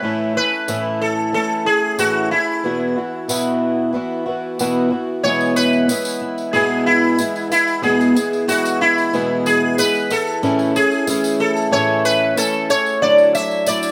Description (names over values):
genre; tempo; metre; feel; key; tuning
acoustic folk duo or small band; 92 BPM; 4/4; straight; E mixolydian; A4 = 440 Hz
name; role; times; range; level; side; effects
sitar; melody; 0.0-13.9 s; E4 to E5; -20 LUFS; equal; none
fingerpicked twelve-string acoustic guitar; accompaniment; 0.0-13.9 s; E2 to F#4; -22 LUFS; equal; slapback echo
tambourine; percussion; 0.7-13.9 s; none; -31 LUFS; equal; none
picked steel-string acoustic guitar; arpeggios; 5.2-13.9 s; F#3 to A4; -28 LUFS; equal; none
room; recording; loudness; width
light reverb; recorded outdoors, with no room sound; -18 LUFS; mono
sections
0.0-5.2 A section; 5.2-13.9 B section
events
none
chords
0.0 A; 2.6 Esus2; 5.2 E; 10.4 A; 13.0 Dadd9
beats
| 0.04 0.69 1.34 1.99 | 2.64 3.29 3.94 4.59 | 5.24 5.89 6.54 7.18 | 7.83 8.48 9.13 9.78 | 10.43 11.07 11.72 12.37 | 13.02 13.67